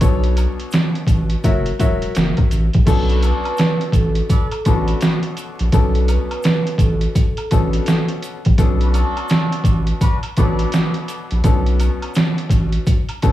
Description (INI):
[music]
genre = hip hop, boom-bap hip-hop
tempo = 84 BPM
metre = 4/4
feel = swing 63% on 16ths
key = B minor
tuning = A4 = 435 Hz
[part]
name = warm upright piano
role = accompaniment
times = 0.0-13.3 s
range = B2 to E5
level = -24 LUFS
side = left 4 dB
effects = cassette tape, high-pass filter, low-pass filter
[part]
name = saturated sub bass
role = bass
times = 0.0-13.3 s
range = E1 to B1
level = -18 LUFS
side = equal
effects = none
[part]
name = trip hop sampler-style drum kit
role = drums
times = 0.0-13.3 s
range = crash cymbal, hi-hat, kick drum, snare drum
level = -17 LUFS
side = equal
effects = overdrive
[part]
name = egg shaker and woodblock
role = percussion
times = 0.0-13.3 s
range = none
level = -36 LUFS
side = equal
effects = none
[part]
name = vibraphone with soft mallets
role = melody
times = 2.9-8.1 s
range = A4 to B4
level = -27 LUFS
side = right 2 dB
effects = high-pass filter, low-pass filter, tape echo
[part]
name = muted trumpet section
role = stabs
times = 3.1-10.9 s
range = D4 to D5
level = -28 LUFS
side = equal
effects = high-pass filter, low-pass filter, tape echo
[sound]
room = studio reverb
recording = vinyl crackle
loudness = -15 LUFS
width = side -14 dB against mid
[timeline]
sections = 0.0-2.9 A section; 2.9-13.3 B section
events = none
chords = 0.0 Bm7; 1.4 F#7; 2.9 Bm7